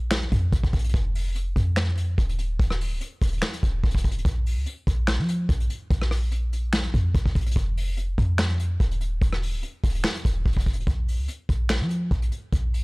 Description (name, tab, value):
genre	hip hop, trap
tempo	145 BPM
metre	4/4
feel	half-time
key	Bb minor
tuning	A4 = 440 Hz
part	clean 808-style bass	bass	0.0-12.8 s	Db1 to F3	-24 LUFS	equal	none
part	vintage brush drum kit	drums	0.1-12.8 s	finger snaps, hi-hat, kick drum, rim click, snare drum	-25 LUFS	equal	none
room	little or no reverb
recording	dry, gritty hardware recording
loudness	-22 LUFS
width	side -27 dB against mid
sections	0.0-10.9 A section; 10.9-12.8 B section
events	none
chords	none